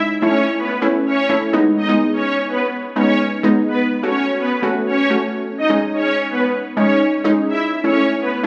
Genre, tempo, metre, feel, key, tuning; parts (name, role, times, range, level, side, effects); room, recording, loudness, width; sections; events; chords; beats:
pop; 126 BPM; 4/4; straight; C# minor; A4 = 440 Hz
filtered supersaw swell; melody; 0.2-8.3 s; B3 to E5; -21 LUFS; equal
analog pluck; accompaniment; 0.2-8.5 s; G#3 to F#4; -20 LUFS; equal; chorus
moderate lush hall reverb, RT60 2.5 s; recorded on a phone in the room, club reverb; -17 LUFS; mono
0.0-8.5 A section
0.0 A; 1.5 G#m; 3.7 F#m; 5.6 C#sus2; 7.5 A
0.34 0.82 1.29 | 1.77 2.25 2.72 3.20 | 3.68 4.15 4.63 5.10 | 5.58 6.06 6.53 7.01 | 7.49 7.96 8.44